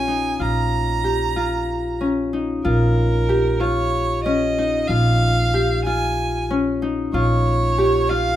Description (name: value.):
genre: contemporary instrumental, chamber music in an uneven meter.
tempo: 187 BPM (eighths).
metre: 7/8.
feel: straight.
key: unclear.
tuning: A4 = 438 Hz.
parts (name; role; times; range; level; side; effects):
rich violin; melody; 0.0-8.4 s; Bb4 to Bb5; -23 LUFS; right 3 dB; none.
Celtic harp; arpeggios; 0.0-8.4 s; Db4 to G4; -21 LUFS; left 2 dB; none.
upright bass; bass; 0.0-8.4 s; Bb1; -22 LUFS; right 1 dB; none.
room: light reverb.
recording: close, detailed microphones.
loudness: -17 LUFS.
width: side -12 dB against mid.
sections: 0.0-2.6 A section; 2.6-8.4 B section.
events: none.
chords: 0.0 Bbm.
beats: 0.08 | 0.40 0.72 1.04 1.36 1.69 2.01 2.33 | 2.65 2.97 3.29 3.61 3.93 4.25 4.58 | 4.90 5.22 5.54 5.86 6.18 6.50 6.82 | 7.14 7.46 7.78 8.10.